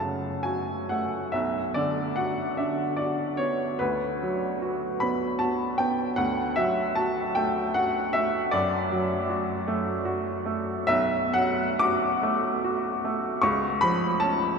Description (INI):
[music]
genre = classical, romantic nocturne for solo piano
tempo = 42-53 BPM (dotted quarters)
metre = 6/8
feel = rubato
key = B minor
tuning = A4 = 440 Hz
[part]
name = clear baby grand piano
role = solo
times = 0.0-14.6 s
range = B1 to D6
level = -24 LUFS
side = equal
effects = none
[sound]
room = wet cathedral reverb, RT60 7.7 s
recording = none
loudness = -24 LUFS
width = side -5 dB against mid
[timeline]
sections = 0.0-1.3 A section; 1.3-14.6 B section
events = none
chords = 0.0 F#m; 1.3 Bm; 3.8 Bm/D; 6.2 D; 8.5 D/F#; 10.9 Bm7; 13.4 C#